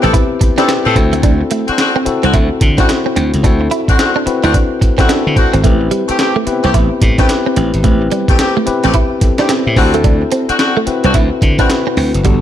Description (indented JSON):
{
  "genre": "R&B, new jack swing",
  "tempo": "109 BPM",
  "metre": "4/4",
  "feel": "swing 62% on 16ths",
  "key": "unclear",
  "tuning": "A4 = 440 Hz",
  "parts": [
    { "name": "tine electric piano", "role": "accompaniment", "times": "0.0-12.4 s", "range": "B3 to E5", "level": "-17 LUFS", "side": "left 5 dB", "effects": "none" },
    { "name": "direct-recorded clean electric guitar", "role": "riff", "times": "0.0-12.4 s", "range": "G3 to E4", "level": "-19 LUFS", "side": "right 6 dB", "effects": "ensemble chorus" },
    { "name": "warm horn section", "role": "stabs", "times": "0.0-11.7 s", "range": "A3 to A4", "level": "-18 LUFS", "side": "left 2 dB", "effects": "none" },
    { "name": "glassy slap bass", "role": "bass", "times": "0.0-12.4 s", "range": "F#1 to D3", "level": "-15 LUFS", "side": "equal", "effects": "none" },
    { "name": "breakbeat sampler-style drum kit", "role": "drums", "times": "0.0-12.4 s", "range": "hi-hat, kick drum, snare drum", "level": "-14 LUFS", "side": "equal", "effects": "none" }
  ],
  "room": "digital ambience",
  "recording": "none",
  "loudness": "-10 LUFS",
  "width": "side -11 dB against mid",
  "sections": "0.0-12.4 A section",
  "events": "none",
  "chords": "0.0 Am7; 1.0 D7; 5.6 Am7; 9.8 D7"
}